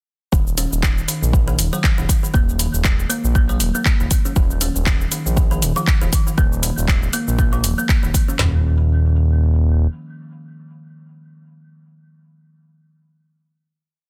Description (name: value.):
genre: afro house.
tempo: 119 BPM.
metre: 4/4.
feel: swing 57% on 16ths.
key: unclear.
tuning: A4 = 441 Hz.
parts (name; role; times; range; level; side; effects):
kalimba; arpeggios; 0.3-8.6 s; Eb3 to Db4; -28 LUFS; equal; sidechain pumping, dub echo.
smooth synth bass; bass; 0.3-9.9 s; Eb1 to Bb1; -21 LUFS; equal; sidechain pumping.
afro-pop drum kit; drums; 0.3-8.5 s; handclaps, kick drum, snare drum, toms; -19 LUFS; equal; studio reverb.
afro-pop drum kit; drums; 0.3-8.4 s; handclaps, hi-hat, shaker; -26 LUFS; equal; studio reverb.
room: little or no reverb.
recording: dense, heavily limited modern master.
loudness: -18 LUFS.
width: mono.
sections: 0.3-8.4 drop; 8.4-12.4 final chord.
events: drop 0.3-8.4.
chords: 0.3 Eb5; 4.4 N.C..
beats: | 0.33 0.83 1.34 1.84 | 2.34 2.85 3.35 3.86 | 4.36 4.87 5.37 5.87 | 6.38 6.88 7.39 7.89 | 8.39 8.90 9.40.